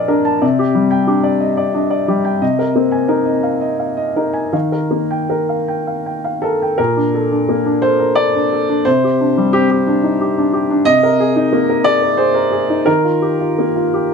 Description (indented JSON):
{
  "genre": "neoclassical minimalist piano",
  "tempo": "79-92 BPM",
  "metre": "3/4",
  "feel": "rubato",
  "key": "Bb major",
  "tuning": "A4 = 440 Hz",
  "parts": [
    { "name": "warm upright piano", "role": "solo", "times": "0.0-14.1 s", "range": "Bb2 to A5", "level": "-13 LUFS", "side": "left 1 dB", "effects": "none" }
  ],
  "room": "light reverb",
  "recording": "close, detailed microphones",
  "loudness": "-13 LUFS",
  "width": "side -5 dB against mid",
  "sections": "0.0-6.8 A section; 6.8-14.1 B section",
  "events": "none",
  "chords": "0.4 Csus2; 2.4 Abadd9/C; 4.5 Ebadd9; 6.8 Bbmaj7; 8.9 Csus2; 10.9 Abadd9/C; 12.9 Ebadd9"
}